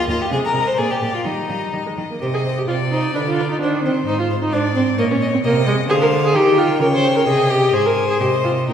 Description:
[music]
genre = quick classical-period movement for string quartet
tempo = 130 BPM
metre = 2/4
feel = straight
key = C minor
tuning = A4 = 440 Hz
[part]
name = clear violin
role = melody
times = 0.0-8.7 s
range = Bb4 to Eb5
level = -25 LUFS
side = left 6 dB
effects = none
[part]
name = clear violin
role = second line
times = 0.0-8.7 s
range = Eb4 to Ab5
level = -24 LUFS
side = left 2 dB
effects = none
[part]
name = rich viola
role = accompaniment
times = 0.0-8.7 s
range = G3 to C5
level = -19 LUFS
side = right 1 dB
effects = none
[part]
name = rich cello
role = bass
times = 0.1-8.7 s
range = Eb2 to Eb3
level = -21 LUFS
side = right 2 dB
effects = none
[sound]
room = wet scoring stage reverb, RT60 1.9 s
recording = heard from further back in the room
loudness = -16 LUFS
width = side -8 dB against mid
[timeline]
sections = 0.0-2.2 A section; 2.2-8.7 B section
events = none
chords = 0.3 Ab; 0.8 Bb; 1.3 Eb; 2.2 Cm; 3.2 Dm6; 3.6 Cm/Eb; 4.1 Ab; 5.0 N.C.; 5.4 Ab/C; 5.9 Bb/D; 6.3 Eb; 6.8 Bbm69/Db (rootless); 7.3 Ab/C; 7.7 Ab

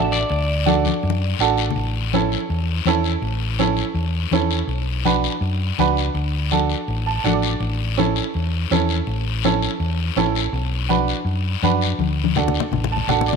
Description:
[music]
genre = latin, cumbia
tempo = 164 BPM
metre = 4/4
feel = straight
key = unclear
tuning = A4 = 440 Hz
[part]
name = bright upright piano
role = accompaniment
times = 0.0-13.4 s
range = C#4 to A5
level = -22 LUFS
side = right 10 dB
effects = none
[part]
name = hollow-body short-scale fingered electric bass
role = bass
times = 0.0-13.4 s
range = A1 to F#2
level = -22 LUFS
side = left 1 dB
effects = none
[part]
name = electric guitar at the edge of break-up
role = melody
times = 0.1-1.4 s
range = D5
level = -26 LUFS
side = left 2 dB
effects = spring reverb, tape echo
[part]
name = guiro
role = percussion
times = 0.1-13.4 s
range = none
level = -28 LUFS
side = left 15 dB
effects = none
[part]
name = congas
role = percussion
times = 0.3-13.4 s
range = none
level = -25 LUFS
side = left 15 dB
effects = none
[sound]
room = moderate plate reverb, RT60 2.7 s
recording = 1960s-style stereo with parts hard left and right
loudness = -18 LUFS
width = side -5 dB against mid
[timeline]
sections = 0.0-1.8 A section; 1.8-13.4 B section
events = drum fill 0.9-1.8, 12.0-13.4; upright piano fill 6.9-7.6, 12.7-13.4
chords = 0.0 D; 1.8 A; 4.7 Bm; 6.1 D; 7.6 A; 10.5 Bm; 12.0 D

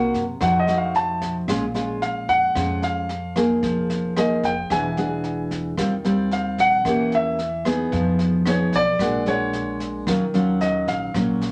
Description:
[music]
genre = bossa nova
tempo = 112 BPM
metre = 4/4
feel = straight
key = Eb minor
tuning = A4 = 443 Hz
[part]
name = warm baby grand piano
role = melody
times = 0.0-11.1 s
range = Db5 to A5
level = -24 LUFS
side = equal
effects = none
[part]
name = nylon-string guitar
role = accompaniment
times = 0.0-11.5 s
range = F2 to Ab4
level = -24 LUFS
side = equal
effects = none
[part]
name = upright bass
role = bass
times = 0.0-11.5 s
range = E1 to Gb2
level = -34 LUFS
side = equal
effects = none
[part]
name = jazz brush drum kit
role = drums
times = 0.1-11.5 s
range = kick drum, rim click, snare drum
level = -36 LUFS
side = equal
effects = none
[sound]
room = wet studio ambience, RT60 0.5 s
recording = none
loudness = -22 LUFS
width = mono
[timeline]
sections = 0.0-11.5 A section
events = none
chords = 0.4 F7b9; 1.5 Bbm7; 3.6 Fm7; 4.7 E9; 5.8 Eb69; 6.8 Edim7; 7.9 Fm7b5; 9.0 Bb7alt; 10.1 Ebm9

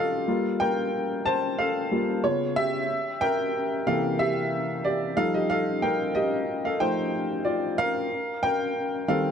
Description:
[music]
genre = R&B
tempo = 92 BPM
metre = 4/4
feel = swing 54% on 16ths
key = unclear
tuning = A4 = 442 Hz
[part]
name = warm upright piano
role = solo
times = 0.0-9.3 s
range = C3 to A5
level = -24 LUFS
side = equal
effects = none
[sound]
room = moderate plate reverb, RT60 3.5 s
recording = dark, warm production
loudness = -24 LUFS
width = side -7 dB against mid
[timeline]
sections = 0.0-9.3 A section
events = upright piano solo 0.0-9.3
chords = 0.3 Gm9; 2.2 C#7; 2.9 C7; 5.2 F9; 8.1 Eb69

